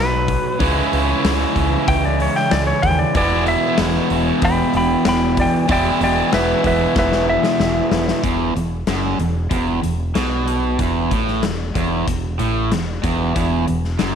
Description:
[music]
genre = classic rock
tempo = 94 BPM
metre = 4/4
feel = straight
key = E major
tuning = A4 = 443 Hz
[part]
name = clean lap steel guitar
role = melody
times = 0.0-8.2 s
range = B4 to B5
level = -20 LUFS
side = equal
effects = none
[part]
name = cranked stack guitar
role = riff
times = 0.0-14.2 s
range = E2 to F#4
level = -19 LUFS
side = right 1 dB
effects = overdrive
[part]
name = growling fingered electric bass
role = bass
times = 0.0-14.2 s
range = E1 to D#2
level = -22 LUFS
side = equal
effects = overdrive
[part]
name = big rock drum kit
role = drums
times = 0.3-14.1 s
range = hi-hat, kick drum, snare drum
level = -24 LUFS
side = left 3 dB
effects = none
[sound]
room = light reverb, small room ambience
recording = 1960s-style stereo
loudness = -16 LUFS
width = side -7 dB against mid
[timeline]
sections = 0.0-8.2 A section; 8.2-14.2 B section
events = electric slide guitar solo 0.0-8.2; drum fill 7.0-8.2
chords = 0.0 B; 0.6 C#m; 3.2 E; 8.2 E5

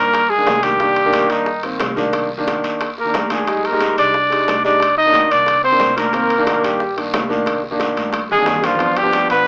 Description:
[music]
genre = Afro-Cuban jazz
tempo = 180 BPM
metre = 4/4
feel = straight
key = C minor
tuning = A4 = 440 Hz
[part]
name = breathy trumpet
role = melody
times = 0.0-9.5 s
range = Eb4 to Eb5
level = -18 LUFS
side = equal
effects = none
[part]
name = breathy tenor saxophone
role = second line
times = 0.0-9.5 s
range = Eb3 to Eb4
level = -26 LUFS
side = equal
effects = none
[part]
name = clear concert grand piano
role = accompaniment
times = 0.0-9.5 s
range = Eb3 to Eb4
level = -23 LUFS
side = equal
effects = none
[part]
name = upright bass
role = bass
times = 0.0-9.5 s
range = C2 to B2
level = -40 LUFS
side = equal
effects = none
[part]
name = bongos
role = percussion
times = 0.1-9.5 s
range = none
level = -30 LUFS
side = equal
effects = none
[part]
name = guiro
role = percussion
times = 0.1-9.5 s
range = none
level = -35 LUFS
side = equal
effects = none
[part]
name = timbales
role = percussion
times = 0.1-9.5 s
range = none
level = -27 LUFS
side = equal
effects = none
[part]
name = congas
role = percussion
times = 0.2-9.5 s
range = none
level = -33 LUFS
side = equal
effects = none
[sound]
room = moderate studio reverb, RT60 0.5 s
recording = AM radio sound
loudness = -17 LUFS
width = mono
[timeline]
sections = 0.0-9.5 A section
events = drum fill 8.0-8.8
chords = 0.0 Cm7; 3.5 Fm7; 4.8 Cm7; 8.8 G7

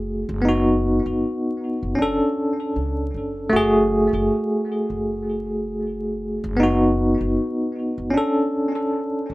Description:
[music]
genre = trip hop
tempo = 78 BPM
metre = 4/4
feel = swing 58% on 16ths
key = unclear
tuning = A4 = 439 Hz
[part]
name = bell-like tine electric piano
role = accompaniment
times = 0.0-9.3 s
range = A3 to A4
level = -20 LUFS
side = equal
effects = tremolo, tape echo
[part]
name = upright bass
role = bass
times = 0.0-9.3 s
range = F#1 to C#2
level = -28 LUFS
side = equal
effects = none
[sound]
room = wet studio reverb, RT60 0.6 s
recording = rough home demo mix, vinyl crackle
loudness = -19 LUFS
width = side -19 dB against mid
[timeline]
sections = 0.0-9.3 A section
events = none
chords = 0.4 B/F#; 2.0 Dmaj7/F#; 3.5 F#madd9; 6.6 B/F#; 8.1 Dmaj7(no3)

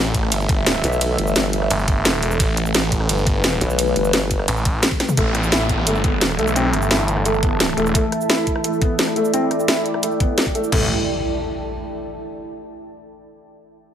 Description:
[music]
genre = dark technical drum and bass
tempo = 173 BPM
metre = 4/4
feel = straight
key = unclear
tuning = A4 = 441 Hz
[part]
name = dark analog pad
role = sustained chords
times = 0.0-10.9 s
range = E3 to E5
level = -25 LUFS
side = equal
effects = chorus, phaser, sidechain pumping
[part]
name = snarling distorted saw bass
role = bass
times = 0.0-7.9, 10.7-10.9 s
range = E1 to B1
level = -21 LUFS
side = equal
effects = distortion, tube saturation
[part]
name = drum and bass drum kit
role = drums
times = 0.1-10.8 s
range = cabasa, crash cymbal, hi-hat, ride cymbal, rim click, snare drum, toms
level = -21 LUFS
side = equal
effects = none
[part]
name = electronic kick drum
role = drums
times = 0.1-10.8 s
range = none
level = -20 LUFS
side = equal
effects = none
[part]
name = formant-sweep wobble bass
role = bass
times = 0.8-4.5 s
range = G1 to B1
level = -21 LUFS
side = equal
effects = chorus
[part]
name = felt-muted upright piano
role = arpeggios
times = 5.2-10.9 s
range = A3 to E4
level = -23 LUFS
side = left 1 dB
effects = sidechain pumping, low-pass filter, digital delay
[part]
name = downlifter and impact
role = sound effects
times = 5.2-7.9, 10.7-12.1 s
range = none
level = -28 LUFS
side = equal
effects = none
[part]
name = deep dark ambient pad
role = texture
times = 6.8-12.1 s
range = E4 to A5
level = -25 LUFS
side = right 1 dB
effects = chorus, built-in reverb, sidechain pumping
[sound]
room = moderate digital room reverb, RT60 1.1 s, digital ambience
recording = none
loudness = -16 LUFS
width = side -9 dB against mid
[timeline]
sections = 0.0-5.2 A section; 5.2-10.7 B section; 10.7-12.1 C section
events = drop 0.0-5.2; drum fill 5.0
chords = 0.0 A5

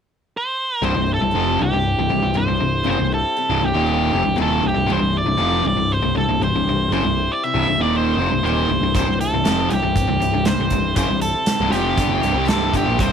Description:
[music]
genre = classic rock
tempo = 118 BPM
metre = 4/4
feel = straight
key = C mixolydian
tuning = A4 = 442 Hz
[part]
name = octave-fuzz lead guitar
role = melody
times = 0.4-13.1 s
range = G4 to E5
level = -21 LUFS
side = right 2 dB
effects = distortion
[part]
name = picked acoustic archtop guitar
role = accompaniment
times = 0.8-13.1 s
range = C3 to E4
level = -29 LUFS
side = left 12 dB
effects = none
[part]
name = crunchy overdriven guitar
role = riff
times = 0.8-13.1 s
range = C2 to G3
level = -24 LUFS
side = right 12 dB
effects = none
[part]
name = tight distorted guitar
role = riff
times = 0.8-13.1 s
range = C2 to G3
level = -23 LUFS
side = left 11 dB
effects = distortion
[part]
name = growling picked electric bass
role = bass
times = 0.8-13.1 s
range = C1 to C2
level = -24 LUFS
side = equal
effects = overdrive
[part]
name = big rock drum kit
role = drums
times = 8.9-13.1 s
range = hi-hat, kick drum, snare drum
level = -23 LUFS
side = right 1 dB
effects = none
[sound]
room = small room ambience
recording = 1960s-style stereo with parts hard left and right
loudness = -16 LUFS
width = side -7 dB against mid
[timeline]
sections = 0.8-13.1 A section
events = none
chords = 0.0 N.C.; 0.8 C

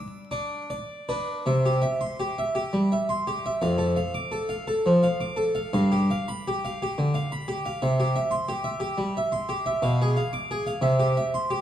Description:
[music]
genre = classical, baroque-style suite movement for harpsichord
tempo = 52-60 BPM (dotted quarters)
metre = 6/8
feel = rubato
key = C major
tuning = A4 = 440 Hz
[part]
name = harpsichord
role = solo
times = 0.0-11.6 s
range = F2 to E6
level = -23 LUFS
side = equal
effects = none
[sound]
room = wet scoring stage reverb, RT60 2.0 s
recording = dark, warm production, vinyl crackle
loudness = -23 LUFS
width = side -11 dB against mid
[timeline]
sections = 0.0-1.5 A section; 1.5-11.6 B section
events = none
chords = 0.0 G (rootless); 1.5 C; 3.6 Dm/F; 5.7 G7; 7.8 C; 9.8 Bdim7; 10.8 C

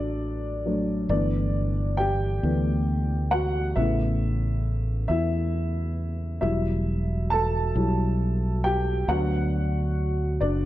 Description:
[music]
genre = six-eight pop ballad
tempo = 45 BPM (dotted quarters)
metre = 6/8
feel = straight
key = unclear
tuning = A4 = 441 Hz
[part]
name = dark upright piano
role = accompaniment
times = 0.0-10.7 s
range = C#3 to A5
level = -26 LUFS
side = left 1 dB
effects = none
[part]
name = fretless electric bass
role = bass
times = 0.0-10.7 s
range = E1 to E2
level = -25 LUFS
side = equal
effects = none
[sound]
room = light reverb, small room ambience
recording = dark, warm production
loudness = -23 LUFS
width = side -14 dB against mid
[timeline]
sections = 0.0-10.7 A section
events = upright piano solo 0.0-10.7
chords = 0.0 D; 1.1 G6; 3.8 Aadd9; 6.4 Emadd9; 9.1 Bm/D

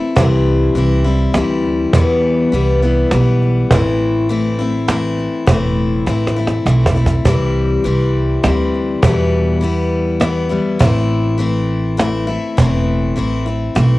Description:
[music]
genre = honky-tonk and classic country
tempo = 102 BPM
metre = 3/4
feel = straight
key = unclear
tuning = A4 = 440 Hz
[part]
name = picked steel-string acoustic guitar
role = accompaniment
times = 0.0-14.0 s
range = E2 to E4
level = -17 LUFS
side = left 3 dB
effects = none
[part]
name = upright bass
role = bass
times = 0.2-14.0 s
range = E1 to E2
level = -17 LUFS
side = right 1 dB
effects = none
[part]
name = cajon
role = drums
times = 0.2-13.9 s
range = none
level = -15 LUFS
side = right 1 dB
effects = cassette tape
[sound]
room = moderate small room reverb, RT60 0.5 s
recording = home recording on cassette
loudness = -13 LUFS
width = side -18 dB against mid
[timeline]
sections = 0.0-7.3 A section; 7.3-14.0 A section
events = drum fill 6.1-7.3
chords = 0.2 C; 1.9 Em; 3.7 Am; 7.3 C; 9.0 Em; 10.8 Am

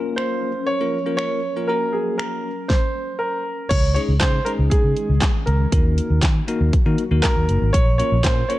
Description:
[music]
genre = dance-pop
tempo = 119 BPM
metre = 4/4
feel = straight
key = Db major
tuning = A4 = 440 Hz
[part]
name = bell-like tine electric piano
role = accompaniment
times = 0.0-8.6 s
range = Ab3 to Bb4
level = -26 LUFS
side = left 3 dB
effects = phaser, sidechain pumping
[part]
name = glassy FM pad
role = sustained chords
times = 0.0-8.6 s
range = Db3 to Bb4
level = -31 LUFS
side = left 3 dB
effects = ensemble chorus, built-in reverb, phaser, sidechain pumping
[part]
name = warm concert grand piano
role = melody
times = 0.2-8.6 s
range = Ab4 to Db5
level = -24 LUFS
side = right 2 dB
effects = none
[part]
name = pop drum kit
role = drums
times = 0.2-8.6 s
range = crash cymbal, finger snaps, handclaps, hi-hat, kick drum, snare drum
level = -19 LUFS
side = equal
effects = none
[part]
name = vintage muted fingered electric bass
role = bass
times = 3.7-8.4 s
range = Gb1 to Eb3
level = -19 LUFS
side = equal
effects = sidechain pumping
[sound]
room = digital ambience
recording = dark, warm production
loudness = -17 LUFS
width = side -16 dB against mid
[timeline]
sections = 0.0-3.7 A section; 3.7-8.6 B section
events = none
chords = 0.0 Bbm; 1.7 Gb; 2.7 N.C.; 3.7 Dbsus2; 5.7 Ebm; 7.7 Bbm

